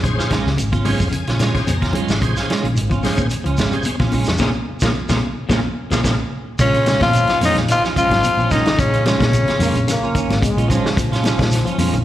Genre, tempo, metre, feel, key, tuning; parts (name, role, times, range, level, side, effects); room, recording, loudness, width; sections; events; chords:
afrobeat; 110 BPM; 4/4; swing 54% on 16ths; Bb minor; A4 = 437 Hz
bright tonewheel organ; accompaniment; 0.0-6.2 s; Db4 to C6; -27 LUFS; left 1 dB; slow rotary speaker, overdrive, chorus vibrato, slapback echo
electric guitar at the edge of break-up; arpeggios; 0.0-12.0 s; Bb2 to G3; -27 LUFS; left 5 dB; slapback echo
hollow-body short-scale fingered electric bass; bass; 0.0-12.0 s; Ab1 to Bb2; -20 LUFS; equal
warm soul drum kit; drums; 0.0-12.0 s; hi-hat, kick drum, snare drum; -22 LUFS; equal
congas; percussion; 0.0-11.9 s; -26 LUFS; left 2 dB; slapback echo
shekere; percussion; 0.0-12.0 s; -27 LUFS; right 2 dB
clean electric guitar; stabs; 0.2-12.0 s; Ab3 to F4; -24 LUFS; right 7 dB; ensemble chorus, slapback echo
raspy tenor saxophone; melody; 6.6-10.1 s; Db4 to F4; -18 LUFS; left 2 dB; slapback echo, tape echo
clear trombone; second line; 6.6-10.1 s; Db3 to F3; -27 LUFS; right 3 dB; slapback echo
clear trombone section; second line; 9.6-12.0 s; F3 to Bb3; -24 LUFS; left 1 dB
light reverb; live gig heard through the venue's PA, recital hall reverb; -15 LUFS; side -13 dB against mid
0.0-6.6 A section; 6.6-12.0 B section
tonewheel organ fill 0.6-2.2; band accent 4.4-6.6; drum fill 5.5-6.6
0.0 Bbm7